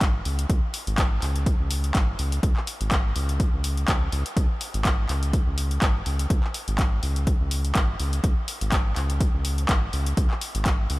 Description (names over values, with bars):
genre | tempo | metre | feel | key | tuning
acid house | 124 BPM | 4/4 | swing 55% on 16ths | unclear | A4 = 440 Hz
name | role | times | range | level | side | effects
round analog bass | bass | 0.0-11.0 s | G#1 to C#2 | -26 LUFS | equal | sidechain pumping
electronic kick drum | drums | 0.0-10.8 s | none | -23 LUFS | equal | overdrive
punchy analog drum machine | drums | 0.0-11.0 s | handclaps, hi-hat | -29 LUFS | left 1 dB | overdrive
room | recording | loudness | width
light reverb, digital ambience | none | -22 LUFS | side -20 dB against mid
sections
0.0-11.0 A section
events
none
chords
none